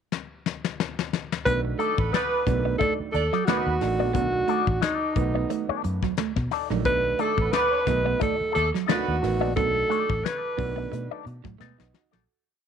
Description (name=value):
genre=funk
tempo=89 BPM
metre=4/4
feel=swing 56% on 16ths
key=B mixolydian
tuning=A4 = 438 Hz
part: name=soft brush drum kit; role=drums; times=0.1-12.3 s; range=hi-hat, kick drum, snare drum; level=-29 LUFS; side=left 6 dB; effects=none
part: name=breathy alto saxophone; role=melody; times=1.5-11.3 s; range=D#4 to B4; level=-26 LUFS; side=right 1 dB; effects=none
part: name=electric guitar at the edge of break-up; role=riff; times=1.5-12.2 s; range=F#3 to B3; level=-32 LUFS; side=right 14 dB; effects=none
part: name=clear upright piano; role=stabs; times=1.5-12.4 s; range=D3 to A4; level=-32 LUFS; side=right 13 dB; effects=none
part: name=vintage muted fingered electric bass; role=bass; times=1.5-12.2 s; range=A1 to B2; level=-29 LUFS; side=equal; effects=none
part: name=mellow horn section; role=second line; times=1.8-9.2 s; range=A3 to D5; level=-31 LUFS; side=right 12 dB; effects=none
part: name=electric guitar with an envelope filter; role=accompaniment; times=1.8-12.2 s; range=D#4 to D#5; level=-30 LUFS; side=left 14 dB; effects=wah
room=light reverb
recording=1960s-style stereo with parts hard left and right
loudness=-22 LUFS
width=side -7 dB against mid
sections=0.0-1.5 pickup bar; 1.5-12.3 A section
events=drum fill 0.1-1.5, 11.6-12.3; fade-out 9.6-12.3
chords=0.0 N.C.; 1.5 B7#9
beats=0.12 0.79 | 1.46 2.13 2.80 3.48 | 4.15 4.82 5.50 6.17 | 6.85 7.53 8.21 8.88 | 9.56 10.24 10.92 11.60